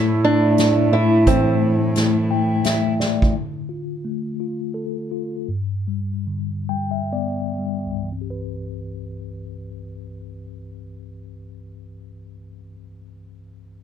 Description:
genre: acoustic folk-pop ballad.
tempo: 60-88 BPM.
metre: 3/4.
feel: straight.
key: C major.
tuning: A4 = 442 Hz.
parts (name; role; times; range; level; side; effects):
pedal steel guitar; second line; 0.0-2.9 s; E4; -32 LUFS; right 7 dB; slapback echo.
mellow tine electric piano; accompaniment; 0.0-13.8 s; C2 to G5; -24 LUFS; left 4 dB; medium stereo tremolo.
dark cello; bass; 0.0-3.3 s; A2; -21 LUFS; equal; none.
nylon-string guitar; melody; 0.2-3.0 s; C4 to E4; -19 LUFS; right 2 dB; none.
soft-mallet drum kit; drums; 0.6-3.4 s; hi-hat, kick drum, snare drum; -23 LUFS; right 1 dB; none.
room: light reverb.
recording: none.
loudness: -18 LUFS.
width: side -9 dB against mid.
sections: 0.0-3.3 A section; 3.3-8.1 B section; 8.1-13.8 C section.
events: drum fill 3.0-3.3; slowing down 3.3-8.1.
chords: 0.0 Am; 3.3 Dm; 5.5 G; 8.1 Cmaj7.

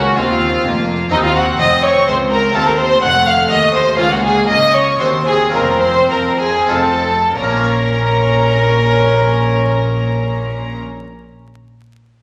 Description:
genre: classical, baroque-style concerto movement with solo episodes.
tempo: 89-127 BPM.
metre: 3/4.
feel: straight.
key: Bb minor.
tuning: A4 = 440 Hz.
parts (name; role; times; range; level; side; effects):
warm violin; melody; 0.0-10.8 s; Eb4 to Gb5; -19 LUFS; equal; none.
rich chamber violin section; second line; 0.0-10.8 s; Eb4 to Gb5; -22 LUFS; equal; none.
harpsichord; accompaniment; 0.0-11.0 s; Db2 to Db5; -26 LUFS; equal; none.
warm chamber viola section; accompaniment; 0.0-10.7 s; A3 to Db4; -22 LUFS; equal; none.
rich chamber cello section; bass; 0.0-10.8 s; Db2 to F3; -28 LUFS; equal; none.
rich studio double bass section; bass; 0.0-10.8 s; F1 to F2; -23 LUFS; equal; none.
warm chamber violin section; melody; 0.2-10.8 s; Eb5 to Gb6; -23 LUFS; equal; none.
room: wet recital hall reverb, RT60 1.5 s.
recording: vinyl crackle.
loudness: -14 LUFS.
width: mono.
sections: 0.0-7.4 A section; 7.4-11.4 B section.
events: slowing down 3.3-7.4.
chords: 0.0 Bbm/Db; 1.1 Ebm13; 2.6 F7; 4.0 Bbm/Db; 5.0 Cdim/Eb; 5.5 Bbm/F; 6.7 F7; 7.4 Bbm.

